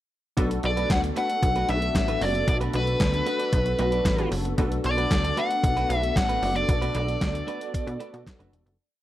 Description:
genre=early-eighties boogie funk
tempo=114 BPM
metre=4/4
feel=straight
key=unclear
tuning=A4 = 441 Hz
part: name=funky polysynth comp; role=accompaniment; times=0.4-8.8 s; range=B3 to A4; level=-32 LUFS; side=left 2 dB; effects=chorus
part: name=direct-recorded clean electric guitar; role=riff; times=0.4-8.7 s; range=A3 to D5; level=-35 LUFS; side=right 3 dB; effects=lush chorus
part: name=plucky analog bass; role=bass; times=0.4-8.8 s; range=E1 to B2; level=-28 LUFS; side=equal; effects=none
part: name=detuned 8-bit digital drum machine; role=drums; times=0.4-8.8 s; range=handclaps, hi-hat, kick drum, snare drum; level=-27 LUFS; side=equal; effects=none
part: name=nasal lead guitar with a parked wah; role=melody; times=0.7-8.2 s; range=B4 to F#5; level=-27 LUFS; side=equal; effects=overdrive
room=light reverb, digital ambience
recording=none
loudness=-22 LUFS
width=side -14 dB against mid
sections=0.4-8.8 verse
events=fade-out 6.7-8.8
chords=0.4 Bm7

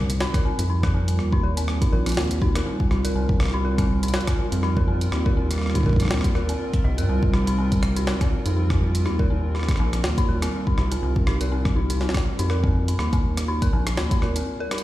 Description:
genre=IDM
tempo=122 BPM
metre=4/4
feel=swing 56% on 16ths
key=C minor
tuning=A4 = 440 Hz
part: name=hollow soft pad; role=sustained chords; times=0.0-14.8 s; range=G3 to Bb4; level=-30 LUFS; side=right 2 dB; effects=chorus, sidechain pumping
part: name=rubbery square bass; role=bass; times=0.0-14.4 s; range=Bb1 to G2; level=-23 LUFS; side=equal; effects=none
part: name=jungle sampler-style drum kit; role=drums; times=0.1-14.8 s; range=hi-hat, rim click, snare drum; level=-30 LUFS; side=equal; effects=none
part: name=dark detuned synth bell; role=arpeggios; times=0.2-14.8 s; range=C4 to Eb5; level=-30 LUFS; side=left 2 dB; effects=chorus, phaser, vintage 12-bit sampler grit, tape echo
part: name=electronic kick drum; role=drums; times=0.3-14.2 s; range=none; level=-22 LUFS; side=equal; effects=none
room=little or no reverb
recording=played on a big sound system in a bare room, large studio reverb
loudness=-20 LUFS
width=side -15 dB against mid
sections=0.0-14.8 A section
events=break 14.5-14.8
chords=0.0 Cm7; 1.2 Eb6; 3.2 C7(no3); 5.1 Eb6; 7.1 Cm7; 9.1 Eb6; 11.0 Cm7; 13.0 Eb6

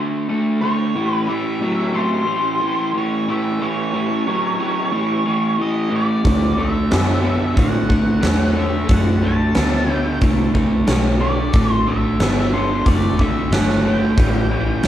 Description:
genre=blues rock power trio and southern rock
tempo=91 BPM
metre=4/4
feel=straight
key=unclear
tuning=A4 = 440 Hz
part: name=raw garage guitar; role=riff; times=0.0-14.9 s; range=A2 to B3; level=-19 LUFS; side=equal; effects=overdrive
part: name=octave-fuzz lead guitar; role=melody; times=0.6-14.9 s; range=C5 to A5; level=-24 LUFS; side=equal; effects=distortion
part: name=overdriven tonewheel organ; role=sustained chords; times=0.6-14.9 s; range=A2 to G5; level=-32 LUFS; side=right 3 dB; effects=slow rotary speaker, chorus vibrato
part: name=vintage muted fingered electric bass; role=bass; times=6.2-14.9 s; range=F#1 to A2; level=-22 LUFS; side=equal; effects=none
part: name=huge arena drum kit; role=drums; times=6.2-14.9 s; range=hi-hat, kick drum, snare drum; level=-19 LUFS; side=equal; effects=none
room=moderate large studio reverb, RT60 1.1 s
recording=band playing live in one room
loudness=-16 LUFS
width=side -11 dB against mid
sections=0.0-14.9 A section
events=none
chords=0.0 D7; 1.0 A7; 6.3 D7; 14.2 A7

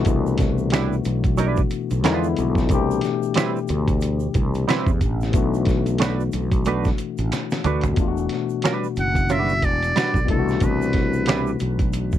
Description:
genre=R&B, neo-soul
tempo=91 BPM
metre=4/4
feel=swing 58% on 16ths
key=E minor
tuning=A4 = 443 Hz
part: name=barky tine electric piano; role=accompaniment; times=0.0-12.2 s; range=B2 to G4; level=-25 LUFS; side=left 9 dB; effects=overdrive
part: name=fretless electric bass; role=bass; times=0.0-12.2 s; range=E1 to E2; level=-23 LUFS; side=right 1 dB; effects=none
part: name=dusty soul sampler-style drum kit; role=drums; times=0.0-12.2 s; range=hi-hat, kick drum, snare drum, toms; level=-23 LUFS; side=right 1 dB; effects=none
part: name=egg shaker and finger snaps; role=percussion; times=0.1-12.2 s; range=none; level=-38 LUFS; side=right 24 dB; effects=none
part: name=semi-hollow electric guitar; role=second line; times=0.7-11.5 s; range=G3 to B4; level=-23 LUFS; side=right 7 dB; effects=analog chorus
part: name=trumpet with metal mute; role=melody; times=9.0-11.6 s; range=A4 to F#5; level=-25 LUFS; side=right 1 dB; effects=none
room=little or no reverb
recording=dark, warm production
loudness=-19 LUFS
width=side -11 dB against mid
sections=0.0-8.0 A section; 8.0-12.2 B section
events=drum fill 7.3-8.0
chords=0.0 Cmaj9; 2.0 E7b9; 2.7 Am9/C; 5.3 Bm7; 8.0 Em9; 10.3 Cmaj9

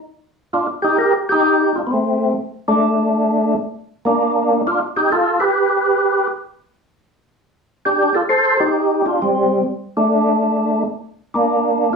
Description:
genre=jazz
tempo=132 BPM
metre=4/4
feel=swing 66% on 8ths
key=unclear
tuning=A4 = 441 Hz
part: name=percussive tonewheel organ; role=solo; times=0.5-12.0 s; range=G3 to C5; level=-15 LUFS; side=equal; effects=slow rotary speaker, overdrive, chorus vibrato
room=wet small room ambience, RT60 0.5 s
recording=band playing live in one room, studio reverb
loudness=-15 LUFS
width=side -4 dB against mid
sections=0.1-12.0 A section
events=none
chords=0.1 Bmaj7b13 (rootless); 1.9 N.C.; 3.7 Gm7; 5.6 N.C.; 7.4 Dm; 9.2 C5; 10.1 N.C.

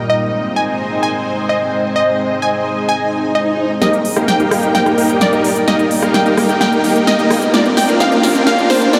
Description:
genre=EDM, festival progressive house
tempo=129 BPM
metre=4/4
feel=straight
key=Eb major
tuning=A4 = 440 Hz
part: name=glassy wavetable pluck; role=melody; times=0.0-9.0 s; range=C5 to Ab5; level=-20 LUFS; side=equal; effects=chorus, analog delay
part: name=lush unison pad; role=sustained chords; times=0.0-9.0 s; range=G3 to G5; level=-21 LUFS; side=equal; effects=chorus, phaser
part: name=swell and riser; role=sound effects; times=3.1-9.0 s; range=none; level=-25 LUFS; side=equal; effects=none
part: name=supersaw chords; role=riff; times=3.8-9.0 s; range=Bb3 to G5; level=-18 LUFS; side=equal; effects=cassette tape, low-pass filter, analog delay
part: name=big-room dance drum kit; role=drums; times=3.8-9.0 s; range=hi-hat, rim click, snare drum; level=-20 LUFS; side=equal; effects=overdrive, studio reverb
room=wet huge ambient reverb, RT60 8.2 s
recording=dreamy mix soaked in reverb, high-pass filter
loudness=-14 LUFS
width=mono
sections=0.0-3.8 A section; 3.8-9.0 B section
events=swell 3.1-3.8; build-up 3.8-9.0; drum fill 3.8-9.0; filter sweep on supersaw synth 3.8-9.0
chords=0.1 Ab; 3.8 Eb; 7.5 Bb

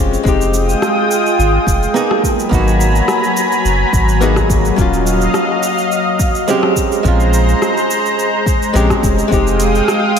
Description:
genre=sunset chillout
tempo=106 BPM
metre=4/4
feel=swing 53% on 16ths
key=F phrygian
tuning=A4 = 441 Hz
part: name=archtop guitar, miked and amplified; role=accompaniment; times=0.0-10.2 s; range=Gb3 to Ab4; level=-18 LUFS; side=moving between left 6 dB and right 5 dB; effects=auto-pan, tape echo
part: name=warm sub bass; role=bass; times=0.0-9.8 s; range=Eb1 to Bb1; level=-15 LUFS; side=equal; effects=none
part: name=deep house drum kit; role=drums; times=0.1-10.2 s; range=cabasa, hi-hat, rim click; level=-22 LUFS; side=right 1 dB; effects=overdrive
part: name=electronic kick drum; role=drums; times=0.2-9.4 s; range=none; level=-17 LUFS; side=equal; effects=overdrive
part: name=lush unison pad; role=sustained chords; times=0.3-10.2 s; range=Gb3 to Eb6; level=-15 LUFS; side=equal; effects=chorus
room=wet lush hall reverb, RT60 2.0 s, digital ambience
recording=dreamy mix soaked in reverb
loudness=-11 LUFS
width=side -7 dB against mid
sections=0.0-10.2 A section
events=none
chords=0.3 Fm9; 2.2 Abm9; 4.8 Ebm9; 6.8 Bbm9; 9.3 Fm9

